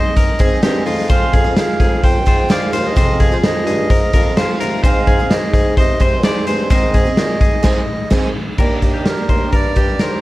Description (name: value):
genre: jangly indie pop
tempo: 128 BPM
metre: 4/4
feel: straight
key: unclear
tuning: A4 = 440 Hz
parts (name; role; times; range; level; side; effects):
- melodica; melody; 0.0-10.2 s; Bb4 to G5; -22 LUFS; right 2 dB; slapback echo
- picked twelve-string acoustic guitar; accompaniment; 0.0-10.2 s; F2 to Ab4; -23 LUFS; right 4 dB; none
- clean electric guitar; arpeggios; 0.0-10.2 s; F4 to D5; -23 LUFS; left 4 dB; slapback echo
- raw garage drum kit; drums; 0.2-10.1 s; crash cymbal, hi-hat, kick drum, snare drum; -14 LUFS; equal; none
- mellow bassoon; bass; 0.4-10.2 s; Eb2 to C3; -22 LUFS; equal; none
room: studio reverb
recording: dark, warm production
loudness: -12 LUFS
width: side -18 dB against mid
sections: 0.0-8.6 A section; 8.6-10.2 B section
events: band accent 7.6-8.6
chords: 0.0 Ab; 0.9 Fm; 4.8 Ab; 8.6 Ebmaj7